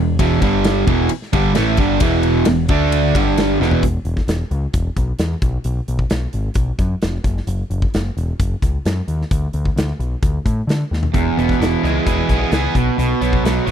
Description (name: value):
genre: classic rock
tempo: 131 BPM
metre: 4/4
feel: straight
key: E major from 3.8 s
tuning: A4 = 440 Hz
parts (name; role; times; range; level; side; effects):
- distorted electric guitar; riff; 0.0-3.8, 11.1-13.7 s; E2 to G#4; -21 LUFS; left 16 dB; distortion
- overdriven semi-hollow guitar; riff; 0.0-3.8, 11.1-13.7 s; E2 to G#4; -18 LUFS; right 15 dB; none
- growling picked electric bass; bass; 0.0-13.7 s; E1 to D3; -20 LUFS; left 1 dB; overdrive
- big rock drum kit; drums; 0.2-13.7 s; hi-hat, kick drum, ride cymbal, snare drum, toms; -21 LUFS; left 1 dB; none
room: little or no reverb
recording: dry, close 1970s-style studio recording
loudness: -15 LUFS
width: side -9 dB against mid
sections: 0.0-3.8 A section; 3.8-13.7 B section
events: drum fill 3.6, 10.9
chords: 0.4 G5; 0.9 E5; 2.7 D5; 3.1 G5; 3.6 E5; 5.4 B5; 7.2 F#5; 9.3 D5; 11.1 E; 12.7 B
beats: | 0.19 0.65 1.10 1.55 | 2.00 2.46 2.91 3.37 | 3.82 4.28 4.73 5.19 | 5.65 6.10 6.56 7.02 | 7.48 7.94 8.39 8.85 | 9.31 9.77 10.23 10.69 | 11.14 11.60 12.06 12.52 | 12.97 13.43